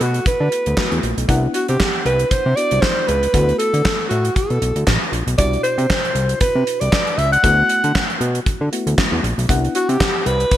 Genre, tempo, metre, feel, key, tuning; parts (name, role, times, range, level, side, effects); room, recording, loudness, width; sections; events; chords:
early-eighties boogie funk; 117 BPM; 4/4; swing 56% on 16ths; D mixolydian; A4 = 441 Hz
breathy alto saxophone; melody; 0.0-10.6 s; F#4 to F#5; -19 LUFS; equal
mellow FM electric piano; accompaniment; 0.0-10.6 s; B2 to F#5; -27 LUFS; left 2 dB; chorus
fat analog bass; bass; 0.0-10.6 s; A1 to D3; -19 LUFS; equal
damped 70s drum kit; drums; 0.0-10.6 s; handclaps, hi-hat, kick drum, snare drum; -20 LUFS; equal; gated reverb
light reverb, small room ambience; bright 1980s-style digital production; -15 LUFS; side -12 dB against mid
0.0-10.6 A section
0.0 D6; 1.3 Cmaj9#11; 3.3 D6; 5.4 Cmaj9#11; 7.4 D6; 9.5 Cmaj9#11